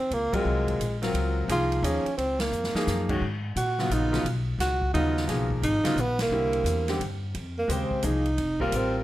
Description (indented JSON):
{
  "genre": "modal jazz",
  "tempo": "174 BPM",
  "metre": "3/4",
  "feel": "swing 64% on 8ths",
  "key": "unclear",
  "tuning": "A4 = 438 Hz",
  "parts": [
    { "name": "breathy tenor saxophone", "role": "melody", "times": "0.0-9.0 s", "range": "Ab3 to Gb4", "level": "-27 LUFS", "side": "right 1 dB", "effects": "none" },
    { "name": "upright bass", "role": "bass", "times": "0.1-9.0 s", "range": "F1 to Bb2", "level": "-29 LUFS", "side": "equal", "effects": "none" },
    { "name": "swinging big-band drum kit", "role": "drums", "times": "0.1-8.8 s", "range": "crash cymbal, hi-hat, kick drum, ride cymbal, snare drum", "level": "-35 LUFS", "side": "right 1 dB", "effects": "none" },
    { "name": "clear grand piano", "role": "accompaniment", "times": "0.3-9.0 s", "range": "Db3 to C5", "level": "-30 LUFS", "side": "left 1 dB", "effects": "none" }
  ],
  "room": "light reverb",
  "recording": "none",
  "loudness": "-24 LUFS",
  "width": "side -15 dB against mid",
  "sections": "0.0-7.3 A section; 7.3-9.0 B section",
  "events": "band accent 0.3, 2.4, 6.1; drum fill 2.5-2.9; tenor saxophone solo 7.3-9.0",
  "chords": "0.0 Bbm11; 3.2 Abm11; 6.3 C7; 7.3 Fm9"
}